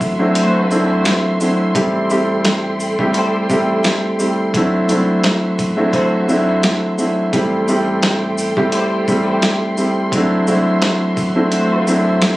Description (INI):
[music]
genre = hip hop, boom-bap hip-hop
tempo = 86 BPM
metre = 4/4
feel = swing 56% on 16ths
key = unclear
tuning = A4 = 440 Hz
[part]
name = dark grand piano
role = accompaniment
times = 0.0-12.4 s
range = F#3 to G4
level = -15 LUFS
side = equal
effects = high-pass filter, low-pass filter
[part]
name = warm studio string section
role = sustained chords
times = 0.0-12.4 s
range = F#4 to C6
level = -26 LUFS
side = equal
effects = high-pass filter, low-pass filter
[part]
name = warm sub bass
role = bass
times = 0.0-12.3 s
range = G1 to D2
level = -30 LUFS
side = equal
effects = none
[part]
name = dusty soul sampler-style drum kit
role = drums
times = 0.0-12.4 s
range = hi-hat, kick drum, shaker, snare drum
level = -18 LUFS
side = equal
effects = none
[part]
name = sleigh bells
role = percussion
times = 0.0-12.4 s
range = none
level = -36 LUFS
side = right 1 dB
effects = none
[part]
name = muted studio string section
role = stabs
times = 0.4-12.0 s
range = A3 to C5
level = -24 LUFS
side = left 1 dB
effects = high-pass filter, low-pass filter, ping-pong delay
[sound]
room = little or no reverb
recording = recorded on a phone in the room, studio reverb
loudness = -14 LUFS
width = side -18 dB against mid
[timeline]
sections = 0.0-12.4 A section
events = none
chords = 0.0 D9; 1.8 Am7; 4.5 D9; 7.3 Am7; 10.1 D9